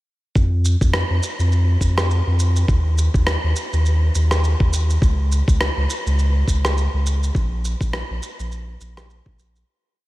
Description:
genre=organic downtempo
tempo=103 BPM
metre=4/4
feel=swing 57% on 16ths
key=unclear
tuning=A4 = 442 Hz
part: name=warm sub bass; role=bass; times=0.4-9.6 s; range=Bb1 to F2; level=-18 LUFS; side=equal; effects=none
part: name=electronic kick drum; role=drums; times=0.4-9.4 s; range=none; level=-18 LUFS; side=equal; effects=none
part: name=electronic shaker and rim click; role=drums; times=0.4-9.7 s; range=none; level=-25 LUFS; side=equal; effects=none
room=light reverb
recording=none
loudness=-16 LUFS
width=side -18 dB against mid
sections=0.4-9.7 groove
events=fade-out 6.6-9.7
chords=none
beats=| 0.36 0.94 1.52 2.10 | 2.69 3.27 3.85 4.43 | 5.02 5.60 6.18 6.76 | 7.35 7.93 8.51 9.09

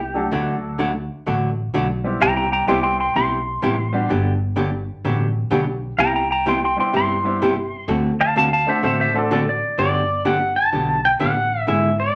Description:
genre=country, western swing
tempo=127 BPM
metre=4/4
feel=swing 66% on 8ths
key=G major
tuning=A4 = 441 Hz
part: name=clean lap steel guitar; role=second line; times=0.0-9.8 s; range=G4 to C6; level=-22 LUFS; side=equal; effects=none
part: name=upright bass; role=bass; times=0.0-12.1 s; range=G1 to D2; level=-28 LUFS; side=equal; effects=none
part: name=clear upright piano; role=accompaniment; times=0.1-9.3 s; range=F#3 to A4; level=-27 LUFS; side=equal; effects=none
part: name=archtop guitar, miked and amplified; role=accompaniment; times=0.3-11.9 s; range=C3 to A4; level=-24 LUFS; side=equal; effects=none
part: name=pedal steel guitar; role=melody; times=9.8-12.2 s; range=D5 to A5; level=-21 LUFS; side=equal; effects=none
room=wet club reverb, RT60 0.7 s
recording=nothing above 10.7 kHz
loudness=-20 LUFS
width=mono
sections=0.0-9.8 A section; 9.8-12.2 B section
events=electric slide guitar solo 0.0-9.8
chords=0.3 Cmaj7; 4.1 Gmaj7; 6.0 Cmaj7; 7.9 D7; 9.8 Gmaj7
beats=| 0.32 0.80 1.27 1.74 | 2.21 2.69 3.16 3.63 | 4.11 4.58 5.05 5.53 | 6.00 6.47 6.94 7.42 | 7.89 8.36 8.84 9.31 | 9.79 10.26 10.73 11.21 | 11.68

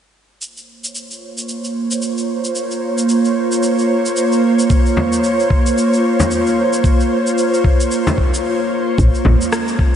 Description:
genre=organic downtempo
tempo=112 BPM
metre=4/4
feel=swing 59% on 16ths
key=Bb minor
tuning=A4 = 439 Hz
part: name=ethereal airy pad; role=sustained chords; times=1.3-10.0 s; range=Ab3 to Db5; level=-16 LUFS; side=right 1 dB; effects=ensemble chorus, built-in reverb, vintage 12-bit sampler grit, sidechain pumping
part: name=electronic cabasa and rim click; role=drums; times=0.4-9.8 s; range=none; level=-26 LUFS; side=equal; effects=none
part: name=electronic kick drum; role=drums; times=4.7-9.9 s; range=none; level=-14 LUFS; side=equal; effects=none
part: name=frame drum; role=percussion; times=5.0-9.4 s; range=none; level=-22 LUFS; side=left 2 dB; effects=none
part: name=woody FM bass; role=bass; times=9.0-9.4 s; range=Bb1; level=-12 LUFS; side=equal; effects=sidechain pumping
room=wet lush hall reverb, RT60 2.8 s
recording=dreamy mix soaked in reverb, nothing above 10.7 kHz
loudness=-13 LUFS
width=side -9 dB against mid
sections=0.4-9.0 A section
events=filter sweep on ambient pad 0.4-9.0; break 8.5-9.0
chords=0.4 Bbm; 9.0 Bbm7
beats=| 0.41 0.95 1.49 2.02 | 2.56 3.09 3.63 4.17 | 4.70 5.24 5.77 6.31 | 6.84 7.38 7.92 8.45 | 8.99 9.52

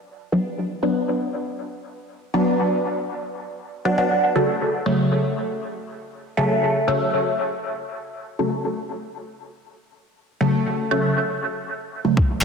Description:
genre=dub techno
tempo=119 BPM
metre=4/4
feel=straight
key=unclear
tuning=A4 = 442 Hz
part: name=filtered dub chord stab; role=stabs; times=0.3-12.4 s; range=C#3 to D4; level=-21 LUFS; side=equal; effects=phaser, sidechain pumping, dub echo
part: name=electronic kick drum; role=drums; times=12.2-12.3 s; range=none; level=-18 LUFS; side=equal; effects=overdrive
room=wet lush hall reverb, RT60 1.8 s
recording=dense, heavily limited modern master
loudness=-20 LUFS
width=side -5 dB against mid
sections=0.0-12.2 A section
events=none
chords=0.0 Bm; 4.1 F#m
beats=| 0.07 0.57 1.08 1.58 | 2.09 2.59 3.10 3.60 | 4.10 4.61 5.11 5.62 | 6.12 6.62 7.13 7.63 | 8.14 8.64 9.15 9.65 | 10.15 10.66 11.16 11.67 | 12.17

